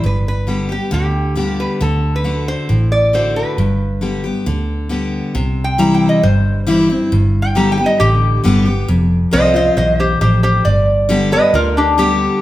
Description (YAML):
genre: honky-tonk and classic country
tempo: 136 BPM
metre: 4/4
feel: straight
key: unclear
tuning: A4 = 440 Hz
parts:
  - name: lap resonator guitar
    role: melody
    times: 0.0-12.4 s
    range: D4 to Bb5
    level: -17 LUFS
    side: equal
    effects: none
  - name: picked steel-string acoustic guitar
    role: accompaniment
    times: 0.0-12.4 s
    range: E2 to G4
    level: -17 LUFS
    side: left 2 dB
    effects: none
  - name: vintage muted fingered electric bass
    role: bass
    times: 0.0-12.3 s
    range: F1 to D2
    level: -17 LUFS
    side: right 1 dB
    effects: none
room: wet large studio reverb, RT60 1.2 s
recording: heard from further back in the room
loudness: -13 LUFS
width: side -14 dB against mid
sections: 0.0-5.3 A section; 5.3-12.4 B section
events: resonator guitar played with a steel bar solo 5.3-12.4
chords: 0.0 G; 1.8 D; 3.6 G; 5.3 C; 7.1 G; 8.9 F; 10.7 G